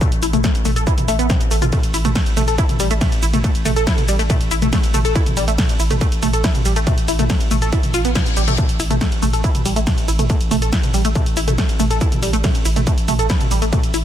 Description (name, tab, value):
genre	driving peak-time techno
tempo	140 BPM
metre	4/4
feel	straight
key	unclear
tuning	A4 = 442 Hz
part	tight sequenced synth	riff	0.0-14.0 s	G3 to A4	-21 LUFS	equal	chorus, phaser, sidechain pumping, dub echo
part	electronic kick drum	drums	0.0-13.8 s	none	-19 LUFS	equal	distortion, overdrive
part	punchy analog drum machine	drums	0.0-14.0 s	hi-hat, ride cymbal, shaker, snare drum, toms	-22 LUFS	right 1 dB	none
part	saturated sub bass	bass	0.1-14.0 s	A1	-21 LUFS	equal	tube saturation, sidechain pumping, low-pass filter
part	reverse cymbal	sound effects	7.9-8.6 s	none	-27 LUFS	left 6 dB	none
room	digital ambience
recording	dense, heavily limited modern master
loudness	-15 LUFS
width	side -10 dB against mid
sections	0.0-14.0 A section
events	reverse cymbal 7.9-8.6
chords	0.0 A5